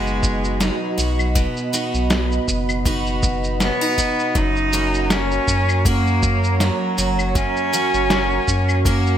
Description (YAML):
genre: folktronica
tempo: 80 BPM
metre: 4/4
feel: swing 56% on 16ths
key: B major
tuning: A4 = 440 Hz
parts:
  - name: bright cello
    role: melody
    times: 0.0-9.2 s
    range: F#3 to D#4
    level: -22 LUFS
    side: left 1 dB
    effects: none
  - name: warbly tape-like pad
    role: sustained chords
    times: 0.0-9.2 s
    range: F#4 to B5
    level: -27 LUFS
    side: right 4 dB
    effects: chorus, built-in reverb, phaser
  - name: picked twelve-string acoustic guitar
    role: arpeggios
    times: 0.0-9.2 s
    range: F#2 to F#4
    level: -24 LUFS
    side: right 1 dB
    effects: none
  - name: warm sub bass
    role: bass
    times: 0.0-9.2 s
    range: F#1 to F#2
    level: -21 LUFS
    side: equal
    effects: none
  - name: electronic shaker, snare drum and claves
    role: drums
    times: 0.1-9.2 s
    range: none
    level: -24 LUFS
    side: equal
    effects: none
  - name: electronic kick drum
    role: drums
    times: 0.2-9.0 s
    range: none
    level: -22 LUFS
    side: equal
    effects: none
room: light reverb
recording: none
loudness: -17 LUFS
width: side -10 dB against mid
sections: 0.0-9.2 A section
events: none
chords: 0.0 B; 4.4 F#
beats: 0.61 | 1.36 2.11 2.86 3.61 | 4.36 5.11 5.86 6.61 | 7.36 8.11 8.86